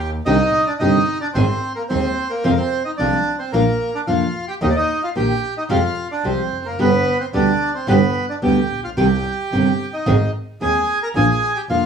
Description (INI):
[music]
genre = tango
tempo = 110 BPM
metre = 4/4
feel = rubato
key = C minor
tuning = A4 = 441 Hz
[part]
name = bandoneon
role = melody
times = 0.0-11.9 s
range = Bb3 to Bb5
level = -20 LUFS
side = right 1 dB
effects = none
[part]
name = clear double bass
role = bass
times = 0.0-11.9 s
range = F1 to F2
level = -22 LUFS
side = right 1 dB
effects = none
[part]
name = nylon-string guitar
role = accompaniment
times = 0.3-11.9 s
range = B2 to Ab4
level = -19 LUFS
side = equal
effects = none
[sound]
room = moderate studio reverb, RT60 0.7 s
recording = none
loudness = -16 LUFS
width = side -7 dB against mid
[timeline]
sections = 0.3-11.9 A section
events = none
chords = 0.3 Cmadd9; 1.4 Ab; 2.4 Fm; 3.5 Bb; 4.6 Eb; 5.7 Fmadd9; 6.8 G; 9.0 Cm; 10.1 Abadd9; 11.1 Bb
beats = | 0.26 0.81 1.35 1.90 | 2.45 2.99 3.53 4.07 | 4.61 5.16 5.70 6.24 | 6.78 7.33 7.87 8.42 | 8.96 9.51 10.06 10.60 | 11.15 11.69